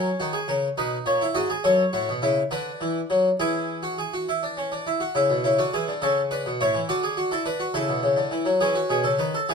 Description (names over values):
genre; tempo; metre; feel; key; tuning
classical, baroque-style 3-part fugue for harpsichord; 69 BPM (dotted quarters); 6/8; straight; unclear; A4 = 440 Hz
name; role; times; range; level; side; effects
harpsichord; solo; 0.0-9.5 s; F#2 to D#5; -22 LUFS; left 1 dB; none
room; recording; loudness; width
light reverb; minimal, uncompressed stereo recording; -22 LUFS; side -5 dB against mid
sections
0.0-5.2 A section; 5.2-9.5 B section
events
none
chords
0.0 F#; 0.8 Bmaj7; 1.7 F#m; 2.5 Bm/D; 3.4 E; 5.2 E13/B; 6.0 A/C#; 6.9 D; 7.7 A; 8.6 E